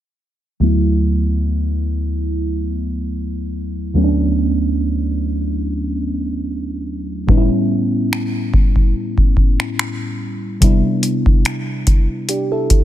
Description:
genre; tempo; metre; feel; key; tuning
contemporary R&B; 72 BPM; 4/4; swing 54% on 16ths; D major; A4 = 440 Hz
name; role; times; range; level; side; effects
mellow FM electric piano; accompaniment; 0.6-12.8 s; D2 to A4; -18 LUFS; equal; chorus, phaser, low-pass filter
booming analog drum machine; drums; 7.3-12.8 s; finger snaps, hi-hat, kick drum; -14 LUFS; equal; soft clipping on snare
room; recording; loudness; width
little or no reverb; dense, heavily limited modern master; -16 LUFS; side -12 dB against mid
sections
0.6-12.8 A section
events
filter sweep on FM electric piano 0.6-12.8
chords
0.6 D69; 7.3 A7; 10.6 Cmaj7

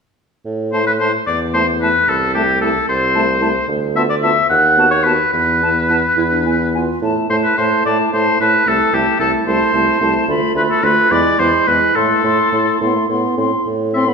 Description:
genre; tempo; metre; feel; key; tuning
quick classical-period movement for wind quintet; 73 BPM (dotted quarters); 6/8; rubato; A minor; A4 = 440 Hz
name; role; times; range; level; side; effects
dark bassoon; bass; 0.5-14.1 s; C2 to A2; -20 LUFS; right 1 dB; none
silver concert flute; melody; 0.7-14.1 s; G#5 to C6; -23 LUFS; left 4 dB; none
clear oboe; second line; 0.7-14.0 s; G4 to F#5; -15 LUFS; left 1 dB; none
warm French horn; accompaniment; 0.7-14.1 s; G#3 to C4; -23 LUFS; left 2 dB; none
warm clarinet; accompaniment; 0.7-14.0 s; D4 to A4; -22 LUFS; right 7 dB; none
room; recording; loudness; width
wet recital hall reverb, RT60 1.6 s; recorded in a church or concert hall; -13 LUFS; side -5 dB against mid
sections
0.5-13.7 A section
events
none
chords
0.5 A5; 2.1 Am/C; 3.7 Bdim/D; 4.5 B/D#; 5.3 E5; 7.0 A5; 8.7 Am/C; 10.3 Bm7b5/D; 11.1 E; 12.0 Am

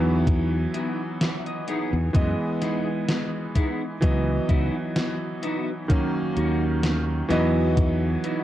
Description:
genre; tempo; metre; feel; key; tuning
vaporwave; 64 BPM; 4/4; swing 54% on 16ths; C# dorian; A4 = 440 Hz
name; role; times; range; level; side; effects
clear electric grand piano; accompaniment; 0.0-8.4 s; D#3 to D#5; -25 LUFS; right 1 dB; analog chorus, vintage 12-bit sampler grit, analog delay
clean electric guitar; riff; 0.0-8.4 s; B3 to G#5; -31 LUFS; left 1 dB; ensemble chorus, vintage 12-bit sampler grit, low-pass filter, analog delay
fingered electric bass; bass; 0.0-8.2 s; C#2 to F#2; -25 LUFS; equal; none
electronic kick drum; drums; 0.3-8.0 s; none; -21 LUFS; equal; none
gated 80s digital drum machine; drums; 0.3-8.4 s; hi-hat, snare drum; -29 LUFS; equal; gated reverb, gated reverb snare, overdrive
room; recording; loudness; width
light reverb, digital ambience; dark, warm production, cassette tape; -22 LUFS; side -13 dB against mid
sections
0.0-8.4 A section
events
clean electric guitar fill 0.3-2.1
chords
0.0 Emaj13; 2.1 F#9sus4 (rootless); 4.0 C#m11; 5.9 D#m7; 7.3 Badd11

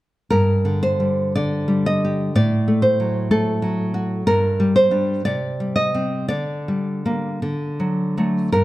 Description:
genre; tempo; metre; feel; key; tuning
romantic piece for solo classical guitar; 54-64 BPM; 2/4; rubato; G minor; A4 = 439 Hz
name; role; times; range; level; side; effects
nylon-string guitar; solo; 0.3-8.6 s; G2 to Eb5; -18 LUFS; equal; none
room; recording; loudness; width
moderate recital hall reverb, RT60 1.6 s; dark, warm production; -18 LUFS; side -16 dB against mid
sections
0.3-8.6 A section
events
none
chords
0.3 G5; 2.3 Am6; 4.2 Gm; 5.2 Cm; 6.3 Gm/D; 7.4 D

